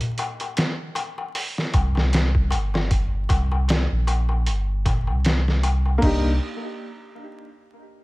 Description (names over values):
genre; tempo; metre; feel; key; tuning
trip hop; 77 BPM; 4/4; swing 56% on 16ths; C minor; A4 = 440 Hz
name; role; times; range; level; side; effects
trip hop sampler-style drum kit; drums; 0.0-6.2 s; crash cymbal, hi-hat, kick drum, snare drum; -24 LUFS; equal; studio reverb
darbuka; percussion; 0.0-6.0 s; none; -30 LUFS; left 3 dB; none
soft dub sub bass; bass; 1.7-6.4 s; G1 to C2; -21 LUFS; equal; none
felt-muted upright piano; accompaniment; 6.0-6.3 s; Bb3 to G4; -26 LUFS; equal; tremolo, tape echo
room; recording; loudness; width
digital ambience; vinyl crackle; -20 LUFS; side -21 dB against mid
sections
0.0-6.0 A section; 6.0-8.0 B section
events
none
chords
0.0 N.C.; 6.0 Cm7